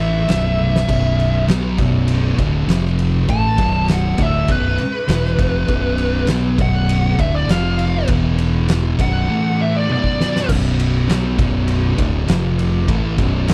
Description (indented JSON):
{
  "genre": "stoner and doom metal",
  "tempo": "100 BPM",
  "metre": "4/4",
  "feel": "straight",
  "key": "unclear",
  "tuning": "A4 = 441 Hz",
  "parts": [
    { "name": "fuzz lead guitar", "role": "melody", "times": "0.0-10.5 s", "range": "B4 to A5", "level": "-25 LUFS", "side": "equal", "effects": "wah, distortion, tape echo" },
    { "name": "thick fuzz guitar", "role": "riff", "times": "0.0-13.5 s", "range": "B1 to B3", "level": "-24 LUFS", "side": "equal", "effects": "distortion" },
    { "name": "thick fuzz guitar", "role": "riff", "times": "0.0-13.5 s", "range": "B1 to B3", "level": "-23 LUFS", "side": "equal", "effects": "distortion" },
    { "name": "growling fingered electric bass", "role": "bass", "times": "0.0-13.5 s", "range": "B0 to B1", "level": "-23 LUFS", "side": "equal", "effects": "overdrive" },
    { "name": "oversized low-tuned drum kit", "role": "drums", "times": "0.3-13.5 s", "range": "crash cymbal, kick drum, ride cymbal, snare drum, toms", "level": "-24 LUFS", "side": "equal", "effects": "none" }
  ],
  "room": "small room reverb",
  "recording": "none",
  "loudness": "-17 LUFS",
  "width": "mono",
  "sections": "0.0-10.5 A section; 10.5-13.5 B section",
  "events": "lead electric guitar solo 0.0-10.5; drum fill 0.6-0.9, 9.9-10.5",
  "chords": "0.3 Bm; 2.7 F5; 3.3 Bm; 7.5 F5; 8.1 E5; 9.0 B5; 9.3 A5; 9.9 Bm; 12.3 F5; 12.9 B5"
}